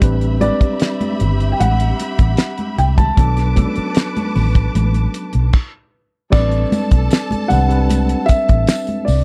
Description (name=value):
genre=lush 1970s-style soul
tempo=76 BPM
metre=4/4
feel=straight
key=A dorian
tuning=A4 = 440 Hz
part: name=warm studio string section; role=second line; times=0.0-9.0 s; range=G4 to D6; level=-31 LUFS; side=equal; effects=none
part: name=tine electric piano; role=accompaniment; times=0.0-9.2 s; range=F#3 to B4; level=-26 LUFS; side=equal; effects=overdrive
part: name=vintage muted fingered electric bass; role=bass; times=0.0-9.2 s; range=G1 to C2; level=-18 LUFS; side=equal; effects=none
part: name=cloth-damped thuddy drum kit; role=drums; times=0.0-9.2 s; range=crash cymbal, hi-hat, kick drum, snare drum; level=-17 LUFS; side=equal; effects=none
part: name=congas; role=percussion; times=0.0-9.2 s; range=none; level=-26 LUFS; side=equal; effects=none
part: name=dark baby grand piano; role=melody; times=0.4-9.2 s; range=D5 to A5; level=-24 LUFS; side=equal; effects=none
part: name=tambourine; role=percussion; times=6.3-9.2 s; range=none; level=-40 LUFS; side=equal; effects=none
room=little or no reverb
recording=dry, close 1970s-style studio recording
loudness=-16 LUFS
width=mono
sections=0.0-6.3 A section; 6.3-9.2 B section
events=stop 5.5-6.3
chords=0.0 Am11; 3.2 Bm7; 6.3 Am11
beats=| 0.02 0.81 1.59 2.38 | 3.17 3.96 4.75 5.53 | 6.32 7.11 7.89 8.68